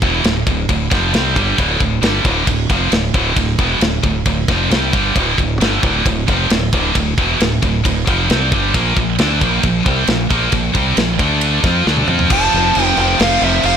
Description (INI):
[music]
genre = heavy metal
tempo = 134 BPM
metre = 4/4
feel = straight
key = D minor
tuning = A4 = 439 Hz
[part]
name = heavy high-gain guitar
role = riff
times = 0.0-13.8 s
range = D2 to F4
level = -19 LUFS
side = left 16 dB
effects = distortion
[part]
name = scooped high-gain guitar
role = riff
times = 0.0-13.8 s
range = D2 to F4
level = -19 LUFS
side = right 13 dB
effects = distortion
[part]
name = growling fingered electric bass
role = bass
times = 0.0-13.8 s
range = D1 to F2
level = -20 LUFS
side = equal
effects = overdrive
[part]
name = tight metal drum kit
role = drums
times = 0.0-13.7 s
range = crash cymbal, kick drum, ride cymbal, snare drum, toms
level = -18 LUFS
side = equal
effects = soft clipping on kick
[part]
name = high-gain lead guitar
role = melody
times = 12.3-13.8 s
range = E5 to A5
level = -16 LUFS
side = equal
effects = distortion
[part]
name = fuzz guitar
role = riff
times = 12.3-13.8 s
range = F2 to F4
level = -22 LUFS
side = equal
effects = distortion
[sound]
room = little or no reverb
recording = blown-out, overdriven recording, overdrive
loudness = -13 LUFS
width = side -8 dB against mid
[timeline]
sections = 0.0-12.3 A section; 12.3-13.8 B section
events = drum fill 11.9-12.3; half time 12.3-13.8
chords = 0.0 Dm; 8.7 Bb5; 11.2 D5; 11.6 Dm7; 12.3 F